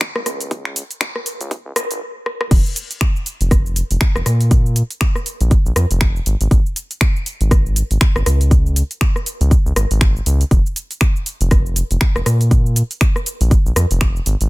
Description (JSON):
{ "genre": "deep house", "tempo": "120 BPM", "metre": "4/4", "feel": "swing 58% on 16ths", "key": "unclear", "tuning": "A4 = 439 Hz", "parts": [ { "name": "electronic kick drum", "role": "drums", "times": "0.0-14.1 s", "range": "none", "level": "-14 LUFS", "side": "equal", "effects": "high-pass filter on kick" }, { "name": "punchy analog drum machine", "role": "drums", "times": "0.0-14.5 s", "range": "crash cymbal, finger snaps, hi-hat, rim click, shaker", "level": "-22 LUFS", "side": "equal", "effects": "overdrive, soft clipping on snare" }, { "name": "round analog bass", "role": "bass", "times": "0.2-14.5 s", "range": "F1 to Bb2", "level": "-16 LUFS", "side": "equal", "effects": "sidechain pumping, high-pass filter" } ], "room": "digital ambience", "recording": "dense, heavily limited modern master, high-pass filter", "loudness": "-14 LUFS", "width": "side -21 dB against mid", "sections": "0.0-2.5 A section; 2.5-14.5 B section", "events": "build-up 0.0-2.5; filter sweep 0.0-2.5; drum fill 2.3; drop 2.5-14.5", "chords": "none", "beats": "0.01 | 0.51 1.01 1.51 2.01 | 2.51 3.01 3.51 4.01 | 4.51 5.01 5.51 6.01 | 6.51 7.01 7.51 8.01 | 8.51 9.01 9.51 10.01 | 10.51 11.01 11.51 12.01 | 12.51 13.01 13.51 14.01" }